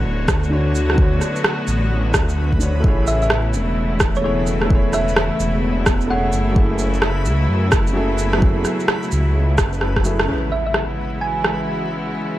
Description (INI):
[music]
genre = future garage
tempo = 129 BPM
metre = 4/4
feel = swing 64% on 16ths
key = C# phrygian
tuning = A4 = 441 Hz
[part]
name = felt-muted upright piano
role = accompaniment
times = 0.0-12.4 s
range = C#3 to C#5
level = -26 LUFS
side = equal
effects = sidechain pumping, tape echo
[part]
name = clear studio string section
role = sustained chords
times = 0.0-12.4 s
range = C#3 to C#5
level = -25 LUFS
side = left 1 dB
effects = vintage 12-bit sampler grit, sidechain pumping
[part]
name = swelling detuned saw bass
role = bass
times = 0.0-10.3 s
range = D1 to F#2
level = -20 LUFS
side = equal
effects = tube saturation, sidechain pumping
[part]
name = backwards swelling texture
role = texture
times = 0.0-12.4 s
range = F#3 to B4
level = -32 LUFS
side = left 1 dB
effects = built-in reverb
[part]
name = electronic kick drum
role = drums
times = 0.3-10.0 s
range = none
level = -18 LUFS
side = equal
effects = none
[part]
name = electronic rim click and shaker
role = drums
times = 0.3-11.6 s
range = none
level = -21 LUFS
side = right 1 dB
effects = low-pass filter on perc, low-pass filter on snare, low-pass filter on room
[part]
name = thumb-piano-like synth pluck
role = melody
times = 3.1-6.6, 10.5-11.5 s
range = C#5 to G#5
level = -25 LUFS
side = right 1 dB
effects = chorus, tape echo
[part]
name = impact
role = sound effects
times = 10.3-12.1 s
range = none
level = -28 LUFS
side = equal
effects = none
[sound]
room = light reverb, digital ambience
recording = vinyl crackle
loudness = -16 LUFS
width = side -14 dB against mid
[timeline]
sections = 0.0-10.3 A section; 10.3-12.4 B section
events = drum fill 9.8-10.3; band accent 10.2; impact 10.3-12.1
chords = 0.0 Dmaj7; 2.8 Amaj7; 6.6 F#m9; 10.3 C#m7